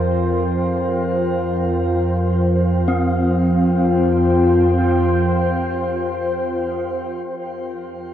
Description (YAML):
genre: dark ambient drone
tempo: free time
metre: none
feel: none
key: unclear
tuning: A4 = 441 Hz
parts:
  - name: deep dark ambient pad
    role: sustained chords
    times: 0.0-7.3 s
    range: F4 to G5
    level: -21 LUFS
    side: left 1 dB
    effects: chorus, built-in reverb, shimmer reverb
  - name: analog drone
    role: drone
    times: 0.0-6.9 s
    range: F2 to F3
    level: -19 LUFS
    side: equal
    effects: chorus
  - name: bronze singing bowl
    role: texture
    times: 0.0-2.9 s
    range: Bb4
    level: -33 LUFS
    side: equal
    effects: none
  - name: gamelan-type bronze metallophone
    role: arpeggios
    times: 2.9-6.9 s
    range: C4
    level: -24 LUFS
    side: equal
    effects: diffuse ambient delay, shimmer reverb
room: wet huge ambient reverb, RT60 7.8 s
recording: worn, warbling old tape, cassette tape, warbly pitch drift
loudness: -16 LUFS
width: side -10 dB against mid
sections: 0.0-2.9 A section; 2.9-8.0 B section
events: none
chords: 0.0 Fsus2